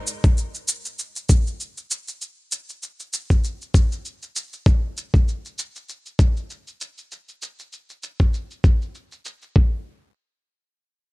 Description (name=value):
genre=organic downtempo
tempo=98 BPM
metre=4/4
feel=swing 56% on 16ths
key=none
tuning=none
part: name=shaker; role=drums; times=0.1-9.5 s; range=none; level=-28 LUFS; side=right 1 dB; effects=low-pass filter on perc, low-pass filter on snare, low-pass filter on room
part: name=electronic kick drum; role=drums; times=0.2-9.7 s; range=none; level=-16 LUFS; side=equal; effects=none
room=little or no reverb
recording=bright 1980s-style digital production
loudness=-20 LUFS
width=side -23 dB against mid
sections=0.0-9.6 A section; 9.6-11.1 B section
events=none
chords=none